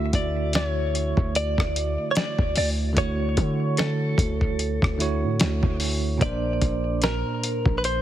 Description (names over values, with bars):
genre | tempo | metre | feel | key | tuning
contemporary R&B | 74 BPM | 4/4 | swing 58% on 16ths | unclear | A4 = 442 Hz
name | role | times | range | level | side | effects
direct-recorded clean electric guitar | melody | 0.0-8.0 s | A4 to E5 | -28 LUFS | equal | wide subtle chorus, ping-pong delay
bell-like tine electric piano | accompaniment | 0.0-8.0 s | Bb2 to E5 | -28 LUFS | right 5 dB | fast stereo tremolo
warm 808-style bass | bass | 0.0-8.0 s | Bb1 to D3 | -26 LUFS | left 1 dB | none
dusty soul sampler-style drum kit | drums | 0.1-8.0 s | hi-hat, kick drum, rim click, snare drum | -25 LUFS | left 1 dB | none
room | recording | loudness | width
little or no reverb | heavily compressed radio sound | -21 LUFS | side -12 dB against mid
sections
0.0-8.0 A section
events
none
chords
0.0 Dmaj9; 6.2 Bbadd9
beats
0.54 1.35 2.16 | 2.97 3.78 4.59 5.40 | 6.21 7.02 7.83